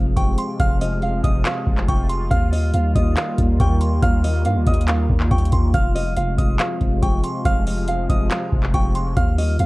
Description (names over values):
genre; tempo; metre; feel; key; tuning
hip hop, trap; 140 BPM; 4/4; half-time; F minor; A4 = 442 Hz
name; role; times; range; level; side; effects
nylon-string guitar; melody; 0.0-9.7 s; Eb5 to G5; -27 LUFS; right 1 dB; low-pass filter
sweeping resonant pad; sustained chords; 0.0-9.7 s; C3 to F4; -26 LUFS; equal; chorus
long sustained 808-style bass; bass; 0.0-9.7 s; F1 to G2; -20 LUFS; equal; none
delicate synth tine bell; second line; 0.2-9.7 s; C6 to F6; -31 LUFS; right 1 dB; chorus, tape echo
booming analog drum machine; drums; 0.2-9.7 s; handclaps, hi-hat, kick drum; -20 LUFS; equal; none
room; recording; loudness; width
little or no reverb; worn, warbling old tape, cassette tape, warbly pitch drift; -17 LUFS; side -21 dB against mid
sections
0.0-9.7 A section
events
none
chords
0.0 Fm; 2.3 Ebadd9; 5.7 Fm